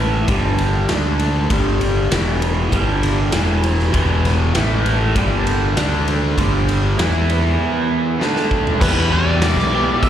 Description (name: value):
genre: classic rock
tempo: 98 BPM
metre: 4/4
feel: straight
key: E minor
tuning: A4 = 439 Hz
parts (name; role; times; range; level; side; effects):
- string machine, full ensemble; sustained chords; 0.0-10.1 s; D4 to E5; -32 LUFS; right 1 dB; none
- overdriven electric guitar; riff; 0.0-10.1 s; E2 to E4; -23 LUFS; right 10 dB; phaser, slapback echo
- overdriven semi-hollow guitar; riff; 0.0-10.1 s; E2 to G4; -23 LUFS; left 8 dB; slapback echo
- fuzz fingered electric bass; bass; 0.0-9.8 s; E1 to E2; -19 LUFS; equal; overdrive
- raw garage drum kit; drums; 0.3-10.1 s; crash cymbal, hi-hat, kick drum, ride cymbal, snare drum, toms; -22 LUFS; equal; none
- cranked stack guitar; riff; 3.9-10.1 s; E2 to E4; -24 LUFS; equal; overdrive, slapback echo
- octave-fuzz lead guitar; melody; 8.8-10.1 s; B4 to E5; -20 LUFS; equal; wah, distortion, slapback echo
room: small room ambience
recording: live gig heard through the venue's PA, recital hall reverb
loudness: -15 LUFS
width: side -10 dB against mid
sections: 0.0-8.8 A section; 8.8-10.1 B section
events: drum fill 8.2-8.8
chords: 0.3 G5; 0.9 D5; 1.5 G5; 2.1 Em; 2.7 G5; 3.3 Em; 4.5 A5; 5.2 G5; 5.8 D5; 6.4 G5; 7.0 Em; 8.2 D5; 8.8 Em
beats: 0.28 0.89 | 1.50 2.11 2.72 3.33 | 3.94 4.55 5.16 5.77 | 6.38 6.99 7.59 8.20 | 8.81 9.42 10.03